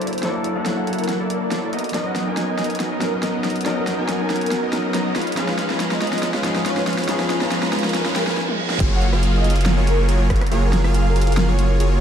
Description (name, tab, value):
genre	future bass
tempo	140 BPM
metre	4/4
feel	half-time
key	F# major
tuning	A4 = 440 Hz
part	barky tine electric piano	accompaniment	0.0-8.8 s	E#3 to A#4	-27 LUFS	left 3 dB	sidechain pumping, dub echo
part	supersaw chords	riff	0.0-12.0 s	F#3 to A#5	-23 LUFS	equal	sidechain pumping, low-pass filter
part	saturated sub bass	bass	0.0-12.0 s	F#1 to C#2	-23 LUFS	equal	sidechain pumping, high-pass filter
part	big-room dance drum kit	drums	0.0-11.9 s	crash cymbal, hi-hat, rim click, snare drum, toms	-26 LUFS	equal	overdrive, high-pass filter on snare, studio reverb, high-pass filter on hats, high-pass filter on toms, high-pass filter on cymbals
part	riser, reverse cymbal and downlifter	sound effects	1.4-12.0 s	none	-32 LUFS	right 2 dB	none
part	breathy flute-like synth lead	melody	0.1-11.5 s	A#4 to F#5	-29 LUFS	equal	ensemble chorus, sidechain pumping, ping-pong delay
part	electronic kick drum	drums	8.8-10.4 s	none	-21 LUFS	equal	studio reverb
room	moderate lush hall reverb, RT60 2.2 s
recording	dark, warm production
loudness	-18 LUFS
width	side -8 dB against mid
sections	0.0-8.8 A section; 8.8-12.0 B section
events	build-up 0.0-8.8; drum fill 0.0-8.4, 8.4-8.8; filter sweep on supersaw synth 0.0-8.8; reverse cymbal 7.9-8.8; drop 8.8-12.0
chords	0.0 F#7alt; 1.7 Bmaj7; 5.2 C#7; 8.8 F#maj9